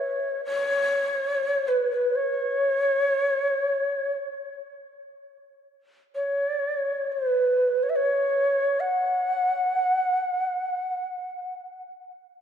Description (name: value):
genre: world meditative, free-time meditation music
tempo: free time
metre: none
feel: none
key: unclear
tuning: A4 = 440 Hz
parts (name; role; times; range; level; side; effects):
- breathy mellow Native American-style cedar flute; solo; 0.0-11.5 s; B4 to F#5; -23 LUFS; equal; none
room: wet church reverb, RT60 3.2 s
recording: dark, warm production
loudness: -22 LUFS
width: side -8 dB against mid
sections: 0.0-12.4 A section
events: none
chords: none